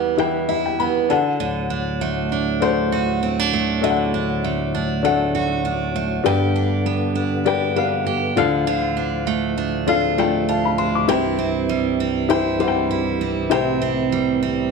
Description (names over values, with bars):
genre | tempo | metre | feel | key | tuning
pop | 99 BPM | 4/4 | swing 55% on 16ths | unclear | A4 = 435 Hz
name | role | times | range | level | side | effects
dark upright piano | accompaniment | 0.0-14.7 s | D4 to D6 | -22 LUFS | left 10 dB | none
picked steel-string acoustic guitar | accompaniment | 0.0-14.7 s | E2 to G4 | -21 LUFS | right 7 dB | none
tonewheel organ | sustained chords | 1.4-14.7 s | C2 to B3 | -25 LUFS | left 1 dB | overdrive, fast rotary speaker
room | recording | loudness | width
wet echo chamber reverb, RT60 1.3 s, small room reverb | 1960s-style stereo with parts hard left and right | -18 LUFS | side -4 dB against mid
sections
0.0-6.3 A section; 6.3-14.7 B section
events
upright piano fill 0.2-1.4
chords
0.0 Em; 1.1 D; 6.3 G; 8.4 Dm; 11.1 C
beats
0.18 0.79 | 1.40 2.01 2.62 3.22 | 3.83 4.43 5.04 5.65 | 6.25 6.86 7.46 8.07 | 8.67 9.28 9.88 10.49 | 11.09 11.70 12.30 12.91 | 13.51 14.12